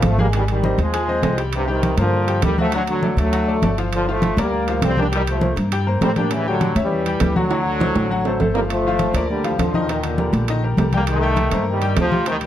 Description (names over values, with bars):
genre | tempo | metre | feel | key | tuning
latin, salsa | 201 BPM | 4/4 | straight | unclear | A4 = 440 Hz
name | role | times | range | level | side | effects
bright trombone section | melody | 0.0-12.4 s | G2 to D4 | -21 LUFS | equal | none
bright concert grand piano | accompaniment | 0.0-12.5 s | Eb3 to Ab5 | -25 LUFS | left 4 dB | none
upright bass | bass | 0.0-12.5 s | G1 to A2 | -22 LUFS | equal | none
congas | percussion | 0.0-12.5 s | none | -24 LUFS | equal | none
timbales | percussion | 0.0-12.5 s | none | -28 LUFS | right 7 dB | none
room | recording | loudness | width
moderate large studio reverb, RT60 0.8 s | none | -17 LUFS | side -11 dB against mid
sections
0.0-12.5 A section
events
drum fill 7.5-8.7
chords
0.3 Abmaj7; 1.5 Cm7; 2.7 D; 3.9 Gm7; 5.1 C7(no3); 6.3 A7; 7.5 D7; 8.7 Gm7; 9.9 Ebmaj7; 11.1 Cm7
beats
0.03 | 0.33 0.63 0.93 1.23 | 1.53 1.83 2.13 2.43 | 2.73 3.03 3.33 3.63 | 3.93 4.23 4.53 4.82 | 5.12 5.42 5.72 6.02 | 6.32 6.61 6.91 7.21 | 7.51 7.80 8.10 8.40 | 8.70 9.00 9.29 9.59 | 9.89 10.19 10.48 10.78 | 11.08 11.38 11.67 11.97 | 12.27